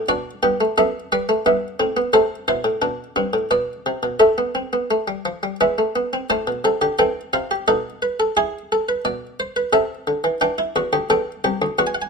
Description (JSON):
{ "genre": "classical, baroque-style 4-part fugue for harpsichord", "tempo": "87 BPM", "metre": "3/4", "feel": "straight", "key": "A minor", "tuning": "A4 = 436 Hz", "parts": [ { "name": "buff-stop harpsichord", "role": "solo", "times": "0.0-12.1 s", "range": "C2 to A5", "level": "-18 LUFS", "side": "equal", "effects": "none" } ], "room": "light reverb", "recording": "minimal, uncompressed stereo recording", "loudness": "-18 LUFS", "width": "side -4 dB against mid", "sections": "0.0-6.3 A section; 6.3-12.1 B section", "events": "none", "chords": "0.1 Bm; 1.5 Em/G; 2.1 Am; 3.5 Bm; 4.2 Esus4/A; 5.6 E; 6.3 Am; 7.7 B7; 8.4 E7/B; 9.7 Am/C; 10.4 Em", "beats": "| 0.09 0.77 1.46 | 2.14 2.83 3.52 | 4.21 4.91 5.60 | 6.30 6.99 7.68 | 8.37 9.05 9.73 | 10.41 11.10 11.79" }